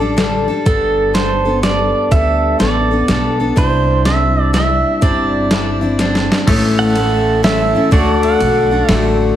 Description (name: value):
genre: honky-tonk and classic country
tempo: 124 BPM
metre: 3/4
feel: swing 65% on 8ths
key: D mixolydian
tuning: A4 = 439 Hz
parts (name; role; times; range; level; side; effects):
- pedal steel guitar; melody; 0.0-9.2 s; F#4 to F#5; -17 LUFS; right 4 dB; none
- picked steel-string acoustic guitar; accompaniment; 0.0-9.4 s; A2 to A4; -16 LUFS; left 3 dB; none
- upright bass; bass; 0.0-9.3 s; G1 to D2; -19 LUFS; right 1 dB; none
- boom bap sampler-style drum kit; drums; 0.2-9.0 s; crash cymbal, hi-hat, kick drum, ride cymbal, snare drum; -18 LUFS; equal; none
- pedal steel guitar; sustained chords; 6.5-9.4 s; A4 to D5; -26 LUFS; right 2 dB; none
room: moderate recital hall reverb, RT60 1.5 s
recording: heavily compressed radio sound, multiband compression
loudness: -12 LUFS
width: side -11 dB against mid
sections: 0.0-6.5 A section; 6.5-9.4 B section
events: drum fill 6.0-6.5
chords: 0.0 Dsus4; 0.7 Gadd9; 3.6 Cadd9; 6.5 A; 7.9 D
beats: 0.18 | 0.66 1.15 1.63 | 2.12 2.60 3.08 | 3.57 4.05 4.54 | 5.02 5.50 5.99 | 6.47 6.96 7.44 | 7.92 8.40 8.89